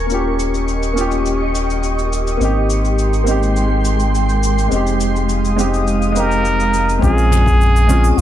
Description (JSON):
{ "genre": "sunset chillout", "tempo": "104 BPM", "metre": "4/4", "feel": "straight", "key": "Bb dorian", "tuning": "A4 = 440 Hz", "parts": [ { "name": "shimmering ambient pad", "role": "sustained chords", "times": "0.0-7.0 s", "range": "Ab3 to Eb6", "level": "-22 LUFS", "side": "equal", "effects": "chorus, built-in reverb" }, { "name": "round analog bass", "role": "bass", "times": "0.0-8.2 s", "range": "Eb1 to C2", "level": "-17 LUFS", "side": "equal", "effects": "tube saturation" }, { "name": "warm grand piano", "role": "accompaniment", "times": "0.1-8.2 s", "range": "Ab3 to G4", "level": "-19 LUFS", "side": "equal", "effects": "auto-pan, digital delay" }, { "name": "cabasa and toms", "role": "drums", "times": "0.1-8.2 s", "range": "none", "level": "-27 LUFS", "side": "left 2 dB", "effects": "low-pass filter on toms, low-pass filter on snare, low-pass filter on perc, low-pass filter on room" }, { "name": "trumpet with plunger mute", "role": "melody", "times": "6.2-8.2 s", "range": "F4 to Bb4", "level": "-17 LUFS", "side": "right 1 dB", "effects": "none" }, { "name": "electronic kick drum", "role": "drums", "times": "7.0-7.6 s", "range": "none", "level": "-20 LUFS", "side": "equal", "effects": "none" }, { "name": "wind-like tuned noise texture", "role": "texture", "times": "7.3-8.2 s", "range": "Eb6", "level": "-32 LUFS", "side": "right 11 dB", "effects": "none" }, { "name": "congas", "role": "percussion", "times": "7.9-8.0 s", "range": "none", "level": "-24 LUFS", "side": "equal", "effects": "none" } ], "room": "moderate recital hall reverb, RT60 1.4 s, studio reverb", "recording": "dark, warm production", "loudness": "-13 LUFS", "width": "side -11 dB against mid", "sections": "0.0-7.0 A section; 7.0-8.2 B section", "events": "filter sweep on ambient pad 0.0-7.0", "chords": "0.0 Eb7; 2.4 Abmaj7; 4.7 Fm7; 7.0 Bbm7", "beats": "| 0.10 0.68 1.25 1.83 | 2.41 2.99 3.56 4.14 | 4.72 5.29 5.87 6.45 | 7.02 7.60 8.18" }